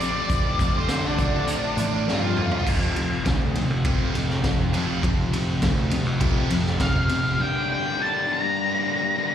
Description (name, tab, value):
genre	quiet-loud alternative rock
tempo	102 BPM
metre	4/4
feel	straight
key	unclear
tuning	A4 = 440 Hz
part	octave-fuzz lead guitar	melody	0.0-2.7, 6.8-9.3 s	D4 to Bb5	-25 LUFS	equal	distortion, slapback echo, analog delay
part	high-gain distorted guitar	riff	0.0-7.4 s	F2 to F4	-30 LUFS	right 10 dB	distortion, slapback echo
part	thick fuzz guitar	riff	0.0-9.3 s	F2 to D4	-28 LUFS	left 8 dB	distortion, slapback echo
part	raw garage drum kit	drums	0.0-7.2 s	crash cymbal, hi-hat, kick drum, ride cymbal, snare drum, toms	-26 LUFS	equal	none
part	fuzz picked electric bass	bass	0.3-7.2 s	D2 to D3	-27 LUFS	right 1 dB	overdrive
part	cranked stack guitar	riff	2.6-7.4 s	F2 to F4	-33 LUFS	right 2 dB	overdrive, slapback echo
part	mellow French horn section	sustained chords	2.7-9.3 s	A3 to F5	-39 LUFS	right 3 dB	none
room	light reverb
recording	live gig heard through the venue's PA, recital hall reverb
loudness	-20 LUFS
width	side -9 dB against mid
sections	0.0-2.7 A section; 2.7-7.4 B section; 7.4-9.3 C section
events	lead electric guitar solo 0.0-2.7; drum fill 2.1-2.7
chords	0.0 F; 2.7 Fadd9; 7.4 Gm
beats	| 0.30 0.90 1.49 2.08 | 2.67 3.27 3.86 4.45 | 5.04 5.63 6.22 6.81 | 7.40 7.99 8.57 9.16